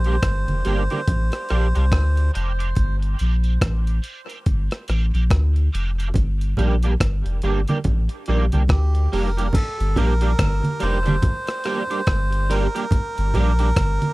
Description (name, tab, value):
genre	dub reggae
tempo	71 BPM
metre	4/4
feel	swing 59% on 16ths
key	G minor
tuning	A4 = 440 Hz
part	melodica	melody	0.0-2.3, 8.7-14.1 s	G4 to C5	-28 LUFS	right 1 dB	dub echo
part	soft dub sub bass	bass	0.0-14.0 s	F1 to D2	-20 LUFS	equal	none
part	breakbeat sampler-style drum kit	drums	0.0-14.1 s	crash cymbal, hi-hat, kick drum, rim click	-22 LUFS	equal	none
part	electric guitar at the edge of break-up	accompaniment	0.1-13.7 s	G3 to G4	-28 LUFS	right 3 dB	ensemble chorus, high-pass filter, dub echo
part	congas	percussion	0.5-14.1 s	none	-26 LUFS	right 2 dB	high-pass filter on perc
room	little or no reverb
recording	dry, close 1970s-style studio recording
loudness	-18 LUFS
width	side -21 dB against mid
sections	0.0-9.5 A section; 9.5-14.1 B section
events	filter sweep 0.0-6.2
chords	0.0 Gm